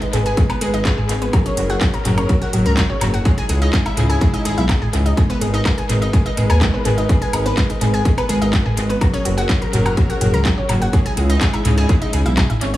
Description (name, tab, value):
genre	melodic techno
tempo	125 BPM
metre	4/4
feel	straight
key	G# minor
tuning	A4 = 440 Hz
part	warm studio string section	sustained chords	0.0-12.8 s	C#3 to B4	-26 LUFS	equal	sidechain pumping
part	analog pluck	arpeggios	0.0-12.8 s	F#3 to A#5	-22 LUFS	equal	chorus, sidechain pumping, tape echo
part	techno drum kit	drums	0.0-12.8 s	handclaps, hi-hat, toms, woodblock	-22 LUFS	equal	overdrive, tape echo
part	dark detuned saw bass	bass	0.1-12.8 s	F#1 to D#2	-19 LUFS	equal	sidechain pumping
part	electronic kick drum	drums	0.4-12.5 s	none	-17 LUFS	equal	overdrive
room	little or no reverb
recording	echo-heavy mix, small room reverb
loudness	-15 LUFS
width	side -15 dB against mid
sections	0.0-12.8 A section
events	none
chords	0.0 G#m; 1.3 F#; 3.3 C#madd9; 5.2 G#madd9; 9.0 F#; 10.9 C#madd9